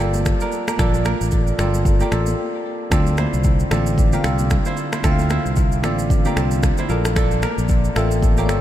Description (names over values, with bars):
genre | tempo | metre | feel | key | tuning
afrobeats | 113 BPM | 4/4 | swing 58% on 16ths | D minor | A4 = 439 Hz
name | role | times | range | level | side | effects
soft electric-piano-like synth keys | accompaniment | 0.0-8.6 s | D3 to F5 | -24 LUFS | left 1 dB | chorus
kora | riff | 0.0-8.6 s | Bb3 to C5 | -26 LUFS | right 4 dB | ping-pong delay
fingered electric bass | bass | 0.0-8.6 s | G1 to D2 | -20 LUFS | equal | none
deep house drum kit | drums | 0.0-8.6 s | finger snaps, kick drum, rim click, shaker | -21 LUFS | equal | none
congas | percussion | 0.2-8.5 s | none | -31 LUFS | equal | none
room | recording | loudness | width
moderate cathedral reverb, RT60 6.0 s | dreamy mix soaked in reverb | -16 LUFS | side -12 dB against mid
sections
0.0-8.6 A section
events
break 2.4-2.9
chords
0.0 Bbmaj7; 2.9 Dm7; 6.9 Bbmaj7